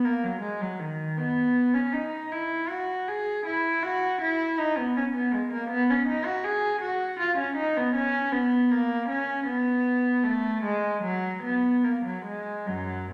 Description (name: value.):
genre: classical, baroque-style suite movement for unaccompanied cello.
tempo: 67-81 BPM.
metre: 3/4.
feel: rubato.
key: B major, F# major from 5.7 s.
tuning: A4 = 440 Hz.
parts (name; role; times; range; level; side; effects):
warm cello; solo; 0.0-13.1 s; F#2 to G#4; -27 LUFS; equal; none.
room: wet recital hall reverb, RT60 1.4 s.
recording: none.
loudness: -27 LUFS.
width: mono.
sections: 0.0-13.1 A section.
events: none.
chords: none.